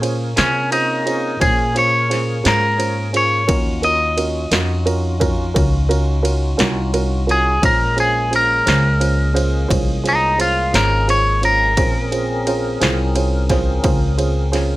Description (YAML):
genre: slow blues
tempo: 58 BPM (dotted quarters)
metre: 12/8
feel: straight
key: Bb minor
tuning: A4 = 441 Hz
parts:
  - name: dark upright piano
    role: accompaniment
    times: 0.0-14.8 s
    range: Db4 to C5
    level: -23 LUFS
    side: right 3 dB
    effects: none
  - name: tonewheel organ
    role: sustained chords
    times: 0.0-14.8 s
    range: Ab3 to Db5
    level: -27 LUFS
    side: left 1 dB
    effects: overdrive, chorus vibrato, slow rotary speaker
  - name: upright bass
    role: bass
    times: 0.0-14.8 s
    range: Ab1 to C3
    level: -20 LUFS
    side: equal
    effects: none
  - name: punchy analog drum machine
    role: drums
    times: 0.0-14.7 s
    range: kick drum, ride cymbal, snare drum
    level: -22 LUFS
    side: equal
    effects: none
  - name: electric guitar at the edge of break-up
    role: melody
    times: 0.4-12.8 s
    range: Db4 to Eb5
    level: -17 LUFS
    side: equal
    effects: warbly pitch drift
room: little or no reverb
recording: none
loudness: -14 LUFS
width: side -18 dB against mid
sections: 0.0-14.8 A section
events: clean electric guitar solo 0.0-14.8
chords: 0.0 Bbm9; 3.5 Ebm9; 7.6 Bbm9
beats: 0.38 1.42 2.45 | 3.49 4.53 5.56 6.60 | 7.63 8.67 9.71 10.74 | 11.78 12.81 13.85